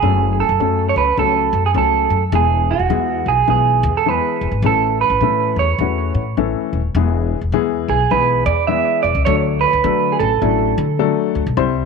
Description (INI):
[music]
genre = uptempo 1960s-style soul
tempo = 104 BPM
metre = 4/4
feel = swing 62% on 8ths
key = unclear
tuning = A4 = 440 Hz
[part]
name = electric guitar through a small old amp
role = melody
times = 0.0-11.3 s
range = F#4 to E5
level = -17 LUFS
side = right 10 dB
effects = spring reverb, tape echo
[part]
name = warm upright piano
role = accompaniment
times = 0.0-11.9 s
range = E3 to C5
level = -20 LUFS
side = left 14 dB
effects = none
[part]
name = upright bass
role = bass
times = 0.0-11.9 s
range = D#1 to D3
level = -20 LUFS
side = left 2 dB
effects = none
[sound]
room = light reverb, small room ambience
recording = 1960s-style stereo with parts hard left and right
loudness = -14 LUFS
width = side -5 dB against mid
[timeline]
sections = 0.0-7.0 A section; 7.0-11.9 B section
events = none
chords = 0.0 F#m; 2.3 E; 4.6 A; 7.0 E; 9.3 D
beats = | 0.03 0.60 1.18 1.76 | 2.33 2.91 3.48 4.06 | 4.64 5.22 5.79 6.37 | 6.95 7.53 8.11 8.69 | 9.27 9.84 10.42 11.00 | 11.58